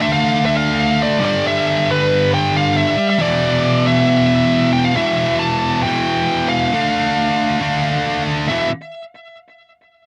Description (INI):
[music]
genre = metal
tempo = 136 BPM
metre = 4/4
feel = straight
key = E phrygian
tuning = A4 = 445 Hz
[part]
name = high-gain lead guitar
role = melody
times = 0.0-8.7 s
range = B4 to A5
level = -20 LUFS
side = equal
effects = distortion, tape echo
[part]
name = scooped high-gain guitar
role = riff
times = 0.0-8.7 s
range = E2 to D4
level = -19 LUFS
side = equal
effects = distortion
[sound]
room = little or no reverb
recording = dry, close 1970s-style studio recording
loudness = -16 LUFS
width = mono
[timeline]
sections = 0.0-5.0 A section; 5.0-8.5 B section; 8.5-10.1 C section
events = half time 0.0-5.0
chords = 0.0 D5; 1.2 G5; 3.2 E5; 6.7 Dm; 8.5 E5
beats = 0.11 0.55 0.99 | 1.43 1.87 2.31 2.75 | 3.19 3.63 4.07 4.51 | 4.95 5.40 5.84 6.28 | 6.72 7.17 7.61 8.06 | 8.50